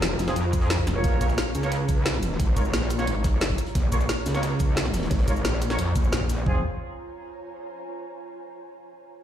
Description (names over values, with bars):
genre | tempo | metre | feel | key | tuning
dark technical drum and bass | 177 BPM | 4/4 | straight | F minor | A4 = 439 Hz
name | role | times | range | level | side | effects
metallic wobble bass | bass | 0.0-6.6 s | F1 to F2 | -25 LUFS | equal | distortion, chorus, overdrive
crunchy breakbeat drum kit | drums | 0.0-6.4 s | hi-hat, snare drum | -38 LUFS | left 1 dB | high-pass filter on hats, high-pass filter on snare, high-pass filter on room
drum and bass drum kit | drums | 0.0-6.4 s | cabasa, hi-hat, snare drum | -29 LUFS | left 1 dB | overdrive
ethereal airy pad | texture | 0.0-7.8 s | F4 to Bb5 | -37 LUFS | right 1 dB | ensemble chorus, built-in reverb, sidechain pumping
mellow brass ensemble | stabs | 0.3-6.6 s | C4 to Db5 | -32 LUFS | right 1 dB | low-pass filter, digital delay
drum and bass drum kit | drums | 0.5-6.5 s | kick drum, toms | -24 LUFS | equal | overdrive
room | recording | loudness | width
studio reverb | played on a big sound system in a bare room, large studio reverb | -22 LUFS | side -10 dB against mid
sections
0.0-6.5 A section; 6.5-7.8 B section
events
fade-out on ambient pad 0.0-6.5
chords
0.0 F5; 1.0 Bbm; 6.5 Fm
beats
0.02 0.36 0.70 | 1.04 1.38 1.72 2.06 | 2.40 2.73 3.07 3.41 | 3.75 4.09 4.43 4.77 | 5.11 5.45 5.79 6.12 | 6.46 6.80 7.14 7.48